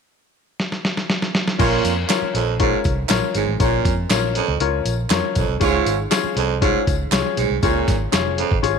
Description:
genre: uptempo 1960s-style soul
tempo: 119 BPM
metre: 4/4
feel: straight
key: Bb minor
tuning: A4 = 438 Hz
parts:
  - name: lo-fi sampler-style drum kit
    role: drums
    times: 0.6-8.8 s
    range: crash cymbal, hi-hat, kick drum, snare drum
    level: -22 LUFS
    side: equal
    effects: none
  - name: clear horn section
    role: second line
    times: 1.6-2.0, 5.6-6.0 s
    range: Ab3 to Db5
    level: -25 LUFS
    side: right 11 dB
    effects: none
  - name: clear baby grand piano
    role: accompaniment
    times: 1.6-8.8 s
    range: Db4 to Db5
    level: -22 LUFS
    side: left 12 dB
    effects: none
  - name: edgy baritone saxophone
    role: riff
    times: 1.6-8.6 s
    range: F2 to Bb2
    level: -24 LUFS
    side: right 11 dB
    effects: none
  - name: vintage muted fingered electric bass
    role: bass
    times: 1.6-8.8 s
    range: F1 to F2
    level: -24 LUFS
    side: equal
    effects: none
  - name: tambourine and handclaps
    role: percussion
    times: 1.6-8.8 s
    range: none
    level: -30 LUFS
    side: right 4 dB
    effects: none
room: moderate plate reverb, RT60 1.7 s, small room ambience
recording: 1960s-style stereo with parts hard left and right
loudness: -17 LUFS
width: side -6 dB against mid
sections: 0.0-1.6 A section; 1.6-8.8 B section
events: drum fill 0.6-1.6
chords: 0.0 N.C.; 1.6 Bbm; 5.6 Db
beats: 0.09 0.59 1.09 | 1.59 2.10 2.60 3.10 | 3.60 4.10 4.61 5.11 | 5.61 6.12 6.62 7.12 | 7.62 8.13 8.63

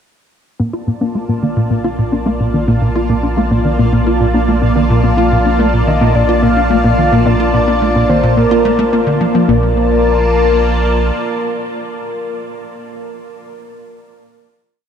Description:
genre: ambient, sequencer-driven space music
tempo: 108 BPM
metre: 4/4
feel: straight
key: Bb major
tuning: A4 = 440 Hz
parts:
  - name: lush unison pad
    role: sustained chords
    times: 0.9-12.5 s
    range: Bb3 to A5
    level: -18 LUFS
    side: right 1 dB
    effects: chorus, phaser
  - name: warbly dusty pluck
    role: arpeggios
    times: 0.6-9.7 s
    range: Bb3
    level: -19 LUFS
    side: moving between left 4 dB and right 3 dB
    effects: chorus, auto-pan, ping-pong delay
  - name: tight sequencer bass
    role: riff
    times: 0.6-9.7 s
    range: Bb2 to F4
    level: -16 LUFS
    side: equal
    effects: wide subtle chorus, ping-pong delay
  - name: round analog bass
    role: bass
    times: 0.6-11.1 s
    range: Bb1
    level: -18 LUFS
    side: equal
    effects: none
  - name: bubbling stepped-filter texture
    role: texture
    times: 1.0-9.5 s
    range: F4 to F5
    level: -31 LUFS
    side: right 1 dB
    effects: chorus, built-in reverb
  - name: breathy flute-like synth lead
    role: melody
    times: 5.0-12.5 s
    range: Bb4 to F5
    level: -17 LUFS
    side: left 2 dB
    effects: lush chorus, ping-pong delay
room: wet huge ambient reverb, RT60 8.2 s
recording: dark, warm production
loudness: -11 LUFS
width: side -8 dB against mid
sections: 0.6-9.5 A section; 9.5-11.7 final chord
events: fade-in on synth texture 0.6-9.5; filter sweep on analog synth bass 0.6-9.5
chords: 0.6 Bbmaj7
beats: | 0.59 1.15 1.71 2.26 | 2.82 3.37 3.93 4.48 | 5.04 5.59 6.15 6.71 | 7.26 7.82 8.37 8.93 | 9.48 10.04 10.59 11.15

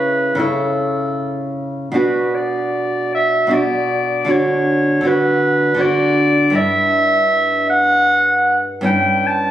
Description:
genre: romantic duo for clarinet and classical guitar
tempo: 78 BPM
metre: 3/4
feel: rubato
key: unclear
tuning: A4 = 437 Hz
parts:
  - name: warm clarinet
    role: melody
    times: 0.0-9.5 s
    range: A4 to A5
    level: -16 LUFS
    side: equal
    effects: none
  - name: nylon-string guitar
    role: accompaniment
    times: 0.0-9.5 s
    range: G2 to F#4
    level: -18 LUFS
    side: right 1 dB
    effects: none
room: moderate recital hall reverb, RT60 1.5 s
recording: recorded on a phone in the room, club reverb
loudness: -14 LUFS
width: side -12 dB against mid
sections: 0.0-9.5 A section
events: none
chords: 0.0 A/C#; 2.0 Bm; 4.3 Bm/D; 6.6 Em7/G; 8.9 A7/G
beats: 0.39 1.18 | 1.96 2.74 3.52 | 4.30 5.06 5.81 | 6.55 7.31 8.08 | 8.86

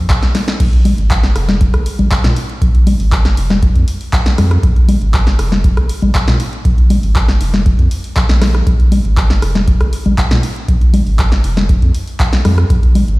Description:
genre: acid house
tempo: 119 BPM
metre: 4/4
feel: straight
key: unclear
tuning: A4 = 440 Hz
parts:
  - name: warm sub bass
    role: bass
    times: 0.0-13.2 s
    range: F1 to Bb2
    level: -14 LUFS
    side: equal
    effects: sidechain pumping
  - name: electronic kick drum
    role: drums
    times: 0.1-12.8 s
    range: none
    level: -13 LUFS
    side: equal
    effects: overdrive, studio reverb
  - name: punchy analog drum machine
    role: drums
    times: 0.1-13.2 s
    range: congas, crash cymbal, handclaps, hi-hat, rim click, snare drum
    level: -17 LUFS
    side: left 1 dB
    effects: studio reverb
room: digital ambience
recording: played on a big sound system in a bare room, stone room reverb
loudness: -10 LUFS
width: side -21 dB against mid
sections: 0.0-13.2 A section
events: drum fill 0.2-0.6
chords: none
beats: 0.10 | 0.60 1.10 1.61 2.11 | 2.62 3.12 3.62 4.13 | 4.63 5.14 5.64 6.15 | 6.65 7.16 7.66 8.16 | 8.67 9.17 9.68 10.18 | 10.68 11.19 11.69 12.20 | 12.70

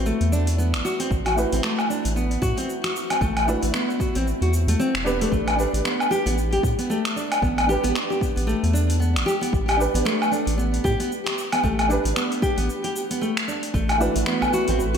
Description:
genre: organic downtempo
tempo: 114 BPM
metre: 4/4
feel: swing 58% on 16ths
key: unclear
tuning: A4 = 441 Hz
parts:
  - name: felt-muted upright piano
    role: accompaniment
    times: 0.0-15.0 s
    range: A3 to B4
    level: -29 LUFS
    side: right 2 dB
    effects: sidechain pumping, ping-pong delay, slapback echo
  - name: nylon-string guitar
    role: arpeggios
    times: 0.0-15.0 s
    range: A3 to G4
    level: -25 LUFS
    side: equal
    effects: ping-pong delay
  - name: round analog bass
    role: bass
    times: 0.0-15.0 s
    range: E1 to A2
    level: -23 LUFS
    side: equal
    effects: none
  - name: deep house drum kit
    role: drums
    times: 0.1-15.0 s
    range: cabasa, finger snaps, hi-hat, woodblock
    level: -26 LUFS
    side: left 1 dB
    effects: overdrive
  - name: electronic kick drum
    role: drums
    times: 1.1-13.9 s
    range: none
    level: -26 LUFS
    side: equal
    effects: overdrive
  - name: warm analog pad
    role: sustained chords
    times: 13.7-15.0 s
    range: E3 to B4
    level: -29 LUFS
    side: right 2 dB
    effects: chorus, sidechain pumping
  - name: djembe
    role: percussion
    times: 13.9-14.9 s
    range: none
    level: -34 LUFS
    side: right 2 dB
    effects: slapback echo
room: moderate lush hall reverb, RT60 1.8 s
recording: big arena sound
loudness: -20 LUFS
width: side -7 dB against mid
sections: 0.0-15.0 A section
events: break 12.7-13.7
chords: 0.0 Am69; 5.3 G/A; 13.7 Asus2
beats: 0.06 0.58 | 1.11 1.64 2.16 2.69 | 3.22 3.74 4.27 4.79 | 5.32 5.85 6.37 6.90 | 7.43 7.95 8.48 9.01 | 9.53 10.06 10.58 11.11 | 11.64 12.16 12.69 13.22 | 13.74 14.27 14.79

